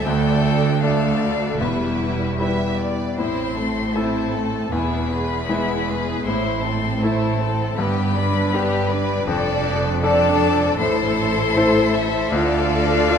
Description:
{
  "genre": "cinematic, emotional film score for orchestra",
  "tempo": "78 BPM",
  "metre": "4/4",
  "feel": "rubato",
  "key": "A minor",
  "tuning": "A4 = 438 Hz",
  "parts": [
    { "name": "rich studio violin section", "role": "melody", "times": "0.0-13.2 s", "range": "G#4 to E5", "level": "-27 LUFS", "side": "left 2 dB", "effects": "none" },
    { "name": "rich violin", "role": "melody", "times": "0.0-13.2 s", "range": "E5 to C6", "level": "-27 LUFS", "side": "left 8 dB", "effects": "none" },
    { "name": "clear symphonic violin section", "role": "second line", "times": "0.0-13.2 s", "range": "C4 to B4", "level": "-27 LUFS", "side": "left 1 dB", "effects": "none" },
    { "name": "bright grand piano", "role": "accompaniment", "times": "0.0-13.2 s", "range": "D2 to D5", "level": "-24 LUFS", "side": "left 3 dB", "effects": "none" },
    { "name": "rich studio viola section", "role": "accompaniment", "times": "0.0-13.2 s", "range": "G3 to F4", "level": "-26 LUFS", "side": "right 1 dB", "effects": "none" },
    { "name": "clear symphonic double bass section", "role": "bass", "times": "0.0-13.2 s", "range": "E1 to D2", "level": "-26 LUFS", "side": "right 5 dB", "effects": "none" },
    { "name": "rich symphonic cello section", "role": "bass", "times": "0.0-13.2 s", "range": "D2 to A2", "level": "-26 LUFS", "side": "right 2 dB", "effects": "none" }
  ],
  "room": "moderate scoring stage reverb, RT60 2.0 s",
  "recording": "none",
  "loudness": "-18 LUFS",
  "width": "side -7 dB against mid",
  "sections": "0.0-13.2 A section",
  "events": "none",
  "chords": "0.1 Dm; 1.6 Em; 3.2 Am; 4.7 E; 6.3 Am; 7.8 G; 9.3 Dm/F; 10.8 Am; 12.3 Dm",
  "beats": "| 0.06 0.83 1.61 2.40 | 3.18 3.96 4.73 5.50 | 6.27 7.03 7.78 8.53 | 9.28 10.04 10.80 11.56 | 12.32 13.10"
}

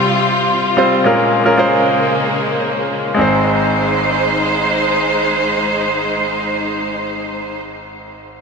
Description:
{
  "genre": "pop",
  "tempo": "free time",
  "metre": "none",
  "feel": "none",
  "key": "Ab major",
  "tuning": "A4 = 440 Hz",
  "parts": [
    { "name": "clear concert grand piano", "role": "accompaniment", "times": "0.0-8.4 s", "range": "Ab1 to C5", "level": "-16 LUFS", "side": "equal", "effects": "none" },
    { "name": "rich studio string section", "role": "sustained chords", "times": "0.0-7.6 s", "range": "C3 to C5", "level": "-17 LUFS", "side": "equal", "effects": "none" }
  ],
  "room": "wet huge ambient reverb, RT60 4.8 s",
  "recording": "dreamy mix soaked in reverb",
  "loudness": "-13 LUFS",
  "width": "side -5 dB against mid",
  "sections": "0.0-3.2 A section; 3.2-7.5 B section",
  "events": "none",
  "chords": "0.0 Csus4; 1.0 Bbm7; 3.2 Ab",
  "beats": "free time"
}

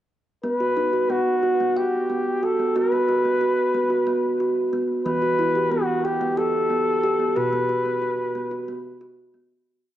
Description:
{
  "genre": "world meditative, meditative tuned percussion",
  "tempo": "182 BPM (eighths)",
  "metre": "7/8",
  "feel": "straight",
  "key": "unclear",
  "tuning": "A4 = 439 Hz",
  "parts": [
    { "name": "warm flugelhorn", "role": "melody", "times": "0.4-9.0 s", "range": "F#4 to B4", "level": "-23 LUFS", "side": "left 2 dB", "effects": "ping-pong delay" },
    { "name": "kalimba", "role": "arpeggios", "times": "0.4-9.7 s", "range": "B2 to F#5", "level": "-22 LUFS", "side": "right 2 dB", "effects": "none" }
  ],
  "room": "wet church reverb, RT60 3.2 s",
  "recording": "worn, warbling old tape, cassette tape, warbly pitch drift",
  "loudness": "-20 LUFS",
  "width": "side -12 dB against mid",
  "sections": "0.4-9.7 A section",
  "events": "fade-out 7.4-9.7",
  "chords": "0.4 B5; 5.1 Em; 7.4 B5",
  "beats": "| 0.44 0.77 1.10 1.43 1.76 2.09 2.42 | 2.75 3.08 3.41 3.74 4.07 4.40 4.73 | 5.06 5.39 5.72 6.05 6.38 6.71 7.04 | 7.37 7.70 8.03 8.36 8.69 9.02 9.35"
}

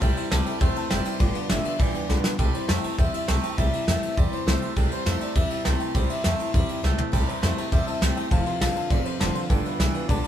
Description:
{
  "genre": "rockabilly",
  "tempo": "202 BPM",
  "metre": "4/4",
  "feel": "straight",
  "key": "C major",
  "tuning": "A4 = 440 Hz",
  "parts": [
    { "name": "picked steel-string acoustic guitar", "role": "accompaniment", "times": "0.0-10.3 s", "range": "G2 to A4", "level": "-34 LUFS", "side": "left 5 dB", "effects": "none" },
    { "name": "tack piano", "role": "accompaniment", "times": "0.0-2.3, 7.1-10.3 s", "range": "B4 to C6", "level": "-36 LUFS", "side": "left 5 dB", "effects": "none" },
    { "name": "twangy electric guitar", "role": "riff", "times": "0.0-10.3 s", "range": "F2 to A3", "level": "-30 LUFS", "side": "right 6 dB", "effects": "none" },
    { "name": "upright bass", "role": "bass", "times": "0.0-10.3 s", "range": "F1 to F2", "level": "-26 LUFS", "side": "equal", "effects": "none" },
    { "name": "soft brush drum kit", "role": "drums", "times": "0.0-10.3 s", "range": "crash cymbal, kick drum, ride cymbal, snare drum, toms", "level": "-25 LUFS", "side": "equal", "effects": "none" },
    { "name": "electric guitar through a small old amp", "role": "melody", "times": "0.5-10.3 s", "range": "A4 to G5", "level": "-32 LUFS", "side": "left 1 dB", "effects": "none" }
  ],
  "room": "light reverb",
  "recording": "band playing live in one room",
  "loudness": "-22 LUFS",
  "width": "side -10 dB against mid",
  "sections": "0.0-2.4 A section; 2.4-10.3 B section",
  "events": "drum fill 2.1, 6.8",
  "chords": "0.0 C; 1.2 G7; 2.4 C; 8.3 F; 9.5 G7",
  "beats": "| 0.02 0.32 0.61 0.91 | 1.21 1.50 1.80 2.10 | 2.39 2.69 2.99 3.28 | 3.58 3.88 4.17 4.47 | 4.77 5.06 5.36 5.66 | 5.95 6.25 6.54 6.84 | 7.13 7.43 7.73 8.02 | 8.32 8.61 8.91 9.20 | 9.50 9.79 10.09"
}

